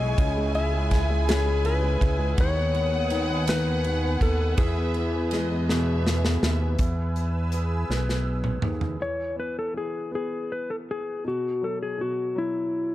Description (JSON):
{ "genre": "six-eight pop ballad", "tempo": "54 BPM (dotted quarters)", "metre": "6/8", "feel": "straight", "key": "E major", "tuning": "A4 = 445 Hz", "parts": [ { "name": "clean lap steel guitar", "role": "melody", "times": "0.0-12.9 s", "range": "E4 to E5", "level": "-29 LUFS", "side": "left 3 dB", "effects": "analog delay" }, { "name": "bright studio violin section", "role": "second line", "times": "0.0-6.8 s", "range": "D#5 to G#5", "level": "-34 LUFS", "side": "right 1 dB", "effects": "analog delay" }, { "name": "warm concert grand piano", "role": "accompaniment", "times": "0.0-12.9 s", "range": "B2 to B4", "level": "-32 LUFS", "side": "equal", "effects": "none" }, { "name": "lush unison pad", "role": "sustained chords", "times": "0.0-9.0 s", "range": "E4 to E6", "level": "-36 LUFS", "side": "equal", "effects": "chorus, phaser" }, { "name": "fat analog bass", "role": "bass", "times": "0.0-9.0 s", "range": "B1 to E2", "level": "-25 LUFS", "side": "equal", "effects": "none" }, { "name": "modern studio drum kit", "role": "drums", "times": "0.2-9.0 s", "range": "hi-hat, kick drum, ride cymbal, snare drum, toms", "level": "-28 LUFS", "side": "equal", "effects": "none" } ], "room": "small room reverb", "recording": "dark, warm production", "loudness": "-23 LUFS", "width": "side -14 dB against mid", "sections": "0.0-6.8 A section; 6.8-9.0 B section; 9.0-12.9 C section", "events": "drum fill 5.7-6.8, 7.9-9.0", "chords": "0.0 C#m; 2.4 G#m/D#; 4.6 E; 9.0 E5; 11.2 Bsus4", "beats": "| 0.18 1.28 | 2.38 3.48 | 4.58 5.68 | 6.78 7.88 | 8.99 10.12 | 11.24 12.36" }